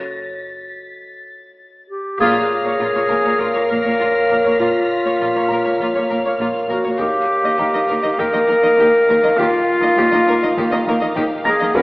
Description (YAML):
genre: cinematic, suspense film score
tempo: 101 BPM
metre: 4/4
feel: straight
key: Bb minor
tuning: A4 = 440 Hz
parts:
  - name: muted studio violin section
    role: texture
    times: 0.0-6.7, 11.7-11.8 s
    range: F6 to C7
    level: -29 LUFS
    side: left 1 dB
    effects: none
  - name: clear clarinet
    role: second line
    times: 1.9-11.8 s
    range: F4 to Bb4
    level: -16 LUFS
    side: equal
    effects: none
  - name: muted symphonic violin section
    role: melody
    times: 2.2-11.8 s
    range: F5 to F#5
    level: -27 LUFS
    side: left 1 dB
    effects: none
  - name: muted chamber violin section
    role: second line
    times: 2.2-11.8 s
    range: F4 to Eb5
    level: -24 LUFS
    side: equal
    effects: none
  - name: muted symphonic viola section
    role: accompaniment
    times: 2.2-11.8 s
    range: Bb3 to C#4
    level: -26 LUFS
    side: equal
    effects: none
  - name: glass harmonica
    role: sustained chords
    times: 2.2-11.8 s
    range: Bb4 to F#5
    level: -24 LUFS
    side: equal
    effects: none
  - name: muted studio cello section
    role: bass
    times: 2.2-11.8 s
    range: Bb2 to Eb3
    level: -27 LUFS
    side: equal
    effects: none
  - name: muted symphonic double bass section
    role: bass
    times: 2.2-11.8 s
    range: Bb1 to Eb2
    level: -32 LUFS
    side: equal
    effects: none
  - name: taiko ensemble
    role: drums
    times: 2.2-11.8 s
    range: none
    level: -27 LUFS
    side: equal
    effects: none
  - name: dark grand piano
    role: texture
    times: 3.1-11.8 s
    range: F5 to Bb6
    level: -27 LUFS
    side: equal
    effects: none
room: wet scoring stage reverb, RT60 1.8 s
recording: AM radio sound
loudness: -14 LUFS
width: side -22 dB against mid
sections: 0.0-2.2 A section; 2.2-11.8 B section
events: break 0.0-2.2; band accent 2.2-2.8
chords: 0.0 Gmadd9 (rootless); 2.2 Bbm; 7.0 Ebadd9